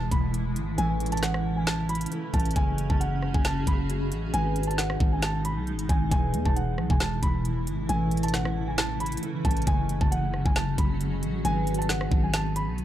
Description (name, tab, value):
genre	hip hop, trap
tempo	135 BPM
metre	4/4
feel	half-time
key	G# phrygian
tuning	A4 = 439 Hz
part	dark concert grand piano	melody	0.0-12.8 s	F#5 to B5	-32 LUFS	right 2 dB	low-pass filter, digital delay
part	concert harp	accompaniment	0.0-12.8 s	E3 to B4	-34 LUFS	equal	low-pass filter
part	granular cloud pad	sustained chords	0.0-12.8 s	B2 to G#4	-33 LUFS	equal	built-in reverb
part	growling 808-style bass	bass	0.0-12.8 s	E1 to E2	-28 LUFS	equal	none
part	trap drum kit	drums	0.1-12.8 s	hi-hat, kick drum, rim click, snare drum	-26 LUFS	equal	none
room	digital ambience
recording	dark, warm production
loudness	-24 LUFS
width	side -12 dB against mid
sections	0.0-12.8 A section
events	none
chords	0.0 E; 0.8 A; 2.6 F#madd9; 4.3 G#m; 6.1 E; 7.9 A; 9.7 F#madd9; 11.4 G#m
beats	0.34 | 0.78 1.23 1.67 2.12 | 2.56 3.00 3.45 3.89 | 4.34 4.78 5.23 5.67 | 6.12 6.56 7.00 7.45 | 7.89 8.34 8.78 9.23 | 9.67 10.12 10.56 11.00 | 11.45 11.89 12.34 12.78